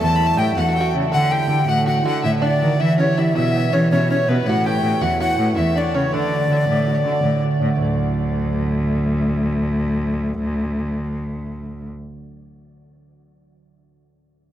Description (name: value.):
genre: celtic folk.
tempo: 108 BPM (dotted quarters).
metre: 9/8.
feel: straight.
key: D major.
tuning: A4 = 439 Hz.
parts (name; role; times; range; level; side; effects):
wooden flute; melody; 0.0-7.4 s; B4 to A5; -22 LUFS; left 2 dB; ping-pong delay.
open-back banjo; second line; 0.0-7.4 s; B3 to A4; -28 LUFS; right 2 dB; none.
rich fiddle; second line; 0.0-7.4 s; B4 to B5; -28 LUFS; left 6 dB; ping-pong delay.
concert harp; accompaniment; 0.0-12.1 s; D2 to E5; -22 LUFS; right 3 dB; none.
rich cello; bass; 0.0-11.9 s; D2 to E3; -22 LUFS; left 1 dB; none.
room: moderate huge ambient reverb, RT60 8.8 s.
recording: dreamy mix soaked in reverb.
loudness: -17 LUFS.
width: side -11 dB against mid.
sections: 0.0-7.8 A section; 7.8-11.1 B section.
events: none.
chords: 0.0 A; 1.1 Dadd9; 2.8 Em; 4.5 Aadd9; 6.1 D.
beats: 0.02 0.57 | 1.13 1.69 2.24 | 2.80 3.35 3.91 | 4.46 5.02 5.57 | 6.13 6.68 7.24 | 7.79 8.35 8.91 | 9.46 10.02 10.57.